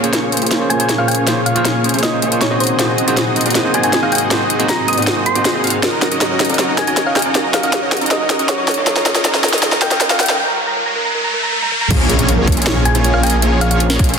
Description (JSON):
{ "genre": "future bass", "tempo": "158 BPM", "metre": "4/4", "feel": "half-time", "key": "Bb minor", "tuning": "A4 = 440 Hz", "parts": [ { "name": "bell-like tine electric piano", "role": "accompaniment", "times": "0.0-5.8 s", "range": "Bb3 to C5", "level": "-22 LUFS", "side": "right 2 dB", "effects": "sidechain pumping, dub echo" }, { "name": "shimmering ambient pad", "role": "sustained chords", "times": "0.5-14.2 s", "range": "Eb2 to Db5", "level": "-26 LUFS", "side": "left 1 dB", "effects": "chorus, built-in reverb, sidechain pumping" }, { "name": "dense compressed supersaw", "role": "riff", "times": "0.0-14.2 s", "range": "Bb3 to F5", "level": "-19 LUFS", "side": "equal", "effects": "cassette tape, sidechain pumping, low-pass filter" }, { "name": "trap drum kit", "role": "drums", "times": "0.0-14.2 s", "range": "crash cymbal, hi-hat, snare drum, toms", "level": "-17 LUFS", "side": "equal", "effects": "overdrive" }, { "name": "thumb-piano-like synth pluck", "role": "melody", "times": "0.7-10.3, 12.9-13.8 s", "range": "C5 to Eb6", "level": "-20 LUFS", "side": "equal", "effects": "chorus, cassette tape, sidechain pumping, ping-pong delay" }, { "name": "soft round pluck", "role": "arpeggios", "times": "5.8-14.1 s", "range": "Ab4 to Eb6", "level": "-24 LUFS", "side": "right 3 dB", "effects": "chorus, sidechain pumping, dub echo" }, { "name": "riser and impact", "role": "sound effects", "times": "9.3-13.4 s", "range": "none", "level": "-22 LUFS", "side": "equal", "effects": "none" }, { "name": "wide detuned saw bass", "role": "bass", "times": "11.9-14.2 s", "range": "Bb1", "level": "-16 LUFS", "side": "equal", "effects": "chorus, sidechain pumping" }, { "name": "electronic kick drum", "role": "drums", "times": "11.9-14.1 s", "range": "none", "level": "-15 LUFS", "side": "equal", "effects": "overdrive" } ], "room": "moderate lush hall reverb, RT60 1.7 s, digital ambience", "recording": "dense, heavily limited modern master, high-pass filter", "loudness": "-13 LUFS", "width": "side -6 dB against mid", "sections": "0.0-11.9 A section; 11.9-14.2 B section", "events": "build-up 0.0-11.9; drum fill 0.0-10.4, 11.6; filter sweep on supersaw synth 0.0-11.9; filter sweep 0.0-11.9; riser 9.3-11.9; break 10.4-11.9; drop 11.9-14.2; impact 11.9-13.4", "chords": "0.0 Bbm7; 2.6 Ab7; 5.8 Gb6; 8.7 Eb9; 11.9 Bbm7" }